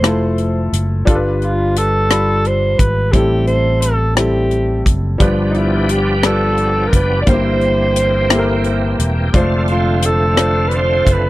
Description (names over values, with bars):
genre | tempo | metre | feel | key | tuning
slow gospel | 58 BPM (dotted quarters) | 6/8 | straight | unclear | A4 = 439 Hz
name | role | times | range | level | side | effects
growling alto saxophone | melody | 0.0-11.3 s | Eb4 to D5 | -18 LUFS | right 1 dB | none
clear concert grand piano | accompaniment | 0.0-11.3 s | G2 to B5 | -19 LUFS | left 1 dB | none
fingered electric bass | bass | 0.0-11.3 s | E1 to A1 | -18 LUFS | equal | none
tight funk drum kit | drums | 0.0-11.2 s | hi-hat, kick drum, rim click | -15 LUFS | equal | none
bright tonewheel organ | sustained chords | 5.2-11.3 s | D3 to G4 | -21 LUFS | right 2 dB | fast rotary speaker, overdrive, chorus vibrato
room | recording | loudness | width
small room ambience | dry, close 1970s-style studio recording | -12 LUFS | side -17 dB against mid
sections
0.0-11.3 A section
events
none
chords
0.0 Fmaj7; 1.1 G7; 3.1 Am7; 5.2 G7; 7.3 C7/G; 9.3 F6